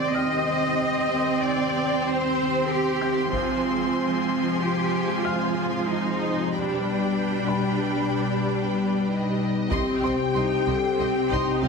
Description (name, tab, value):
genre	cinematic, hybrid orchestral and electronic film score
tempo	94 BPM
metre	5/4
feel	straight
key	C harmonic minor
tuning	A4 = 440 Hz
part	rich chamber violin section	second line	0.0-11.7 s	Eb5 to C6	-31 LUFS	left 1 dB	none
part	warm symphonic viola section	accompaniment	0.0-11.7 s	D3 to Eb4	-28 LUFS	right 2 dB	none
part	analog string pad	sustained chords	0.0-11.7 s	B2 to C5	-27 LUFS	left 1 dB	ensemble chorus
part	clear symphonic cello section	bass	0.0-11.7 s	C3 to Eb5	-28 LUFS	right 1 dB	none
part	felt-muted upright piano	texture	0.0-11.7 s	C5 to G6	-38 LUFS	left 3 dB	none
part	taiko ensemble	drums	3.3-4.6, 9.7-11.7 s	none	-33 LUFS	equal	none
part	warm symphonic violin section	melody	9.1-11.7 s	Eb5 to G5	-33 LUFS	left 6 dB	none
part	mellow French horn section	sustained chords	9.1-11.7 s	Eb4 to G4	-26 LUFS	left 7 dB	none
part	dark trombone section	sustained chords	9.7-11.7 s	C3 to C4	-33 LUFS	right 7 dB	none
part	clear symphonic double bass section	bass	9.7-11.7 s	C2	-32 LUFS	right 3 dB	none
room	moderate scoring stage reverb, RT60 1.7 s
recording	heavily compressed radio sound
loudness	-22 LUFS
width	side -4 dB against mid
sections	0.0-9.7 A section; 9.7-11.7 B section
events	none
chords	0.0 Cm/Eb; 3.3 Fm; 6.5 G; 9.7 Cm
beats	| 0.14 0.78 1.42 2.06 2.69 | 3.33 3.97 4.61 5.25 5.89 | 6.53 7.16 7.80 8.44 9.08 | 9.72 10.36 10.99 11.63